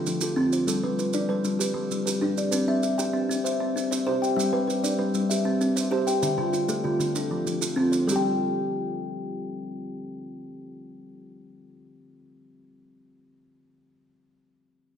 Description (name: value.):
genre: southern african traditional, mbira-style interlocking cycle.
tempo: 130 BPM (dotted quarters).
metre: 12/8.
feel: straight.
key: G mixolydian.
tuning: A4 = 440 Hz.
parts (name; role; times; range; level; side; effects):
kalimba; arpeggios; 0.0-13.0 s; D3 to G5; -26 LUFS; left 2 dB; none.
kalimba; arpeggios; 0.0-13.0 s; D3 to G5; -29 LUFS; right 5 dB; none.
maracas; percussion; 0.1-8.2 s; none; -33 LUFS; right 7 dB; none.
room: wet recital hall reverb, RT60 1.6 s.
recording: recorded in a church or concert hall.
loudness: -23 LUFS.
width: side -8 dB against mid.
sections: 0.0-8.1 A section; 8.1-11.8 B section.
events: none.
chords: 0.0 F; 0.7 G; 2.5 C; 4.4 G; 5.3 C; 6.2 Dm; 7.1 F; 8.1 N.C..